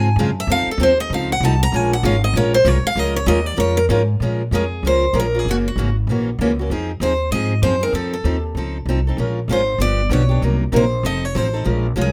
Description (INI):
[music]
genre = acoustic string swing (jazz manouche)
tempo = 193 BPM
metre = 4/4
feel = swing 60% on 8ths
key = Bb minor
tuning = A4 = 443 Hz
[part]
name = picked steel-string acoustic guitar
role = melody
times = 0.0-12.1 s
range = Gb4 to Bb5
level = -22 LUFS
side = equal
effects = none
[part]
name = picked steel-string acoustic guitar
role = accompaniment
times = 0.0-12.1 s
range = C3 to Bb4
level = -24 LUFS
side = equal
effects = none
[part]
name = upright bass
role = bass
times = 0.0-12.1 s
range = F1 to Bb2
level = -22 LUFS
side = equal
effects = none
[sound]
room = light reverb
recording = close, detailed microphones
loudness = -18 LUFS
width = mono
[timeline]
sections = 0.0-4.2 A section; 4.2-12.1 B section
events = steel-string acoustic guitar solo 0.0-4.2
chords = 0.5 F7; 1.7 Bbm7; 5.5 Gb9; 6.7 Fm7; 7.9 F7; 9.2 Bbm7; 9.8 G7; 10.4 Cm7b5; 11.0 F7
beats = 0.18 | 0.49 0.80 1.11 1.42 | 1.73 2.04 2.35 2.66 | 2.97 3.28 3.59 3.90 | 4.21 4.52 4.83 5.14 | 5.45 5.76 6.07 6.38 | 6.70 7.01 7.32 7.63 | 7.94 8.25 8.56 8.87 | 9.18 9.49 9.80 10.11 | 10.42 10.73 11.04 11.35 | 11.66 11.97